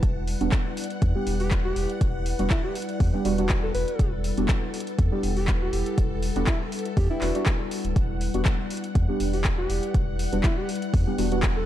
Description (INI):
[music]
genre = deep house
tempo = 121 BPM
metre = 4/4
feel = swing 54% on 16ths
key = E minor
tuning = A4 = 441 Hz
[part]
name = warbly tape-like pad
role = sustained chords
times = 0.0-11.7 s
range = G3 to F#5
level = -33 LUFS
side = left 3 dB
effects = chorus, built-in reverb, sidechain pumping
[part]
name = deep mellow chord stab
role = stabs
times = 0.0-11.7 s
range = G3 to G4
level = -30 LUFS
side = right 1 dB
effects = chorus, phaser, sidechain pumping, ping-pong delay
[part]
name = sub bass with octave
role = bass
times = 0.0-11.6 s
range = D1 to E2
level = -28 LUFS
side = equal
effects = sidechain pumping
[part]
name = deep house drum kit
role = drums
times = 0.0-11.5 s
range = handclaps, hi-hat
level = -33 LUFS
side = left 1 dB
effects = overdrive
[part]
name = electronic kick drum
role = drums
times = 0.0-11.5 s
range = none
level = -24 LUFS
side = equal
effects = overdrive
[part]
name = string machine, violins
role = texture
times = 0.0-11.7 s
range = A4 to F#5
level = -39 LUFS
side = equal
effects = ensemble chorus
[part]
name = warbly tape-like pad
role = texture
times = 0.0-11.7 s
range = E4 to F#5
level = -42 LUFS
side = left 1 dB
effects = none
[part]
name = breathy alto saxophone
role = melody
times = 1.4-11.7 s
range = E4 to B4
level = -33 LUFS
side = equal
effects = ping-pong delay
[sound]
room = little or no reverb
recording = dark, warm production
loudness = -22 LUFS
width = side -12 dB against mid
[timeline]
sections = 0.0-11.7 A section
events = none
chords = 0.0 Em9